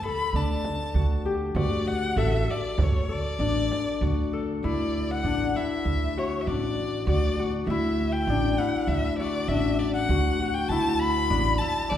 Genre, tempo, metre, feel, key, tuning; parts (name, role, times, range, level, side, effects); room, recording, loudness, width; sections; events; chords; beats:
contemporary instrumental, chamber music in an uneven meter; 99 BPM; 5/4; straight; D major; A4 = 442 Hz
rich violin; melody; 0.0-12.0 s; C#5 to B5; -30 LUFS; left 2 dB
Celtic harp; arpeggios; 0.0-12.0 s; D4 to A4; -28 LUFS; left 4 dB
upright bass; bass; 0.3-12.0 s; A1 to D2; -27 LUFS; right 2 dB
frame drum; percussion; 0.6-4.5 s; -36 LUFS; right 2 dB
wet recital hall reverb, RT60 1.3 s; heard from further back in the room; -23 LUFS; side -10 dB against mid
0.0-4.6 A section; 4.6-12.0 B section
0.0 Gsus2/D; 1.6 D; 4.6 Dadd9
0.34 0.95 | 1.56 2.17 2.78 3.40 4.03 | 4.64 5.26 5.87 6.48 7.08 | 7.69 8.29 8.89 9.50 10.10 | 10.70 11.31 11.92